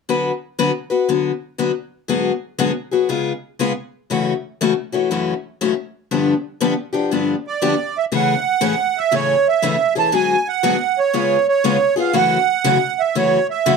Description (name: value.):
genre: jazz.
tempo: 119 BPM.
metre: 4/4.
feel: swing 65% on 8ths.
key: A major.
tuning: A4 = 440 Hz.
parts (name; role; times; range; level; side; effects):
picked steel-string acoustic guitar; accompaniment; 0.1-13.8 s; F#2 to B4; -18 LUFS; left 6 dB; none.
accordion; melody; 7.5-13.8 s; C#5 to A5; -16 LUFS; right 7 dB; light tremolo tuning.
room: moderate studio reverb, RT60 0.6 s.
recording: dark, warm production.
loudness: -16 LUFS.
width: side -5 dB against mid.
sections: 0.1-8.1 A section; 8.1-13.8 B section.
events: none.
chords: 0.1 D6; 2.1 G#m7b5; 3.1 C#7; 4.1 F#m7; 6.1 G7; 8.1 Amaj7; 10.1 G#m7b5; 11.1 C#7; 12.2 F#m7.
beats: | 0.08 0.58 1.09 1.59 | 2.09 2.59 3.10 3.60 | 4.10 4.60 5.11 5.61 | 6.11 6.61 7.12 7.62 | 8.12 8.62 9.13 9.63 | 10.13 10.64 11.14 11.65 | 12.15 12.65 13.16 13.66.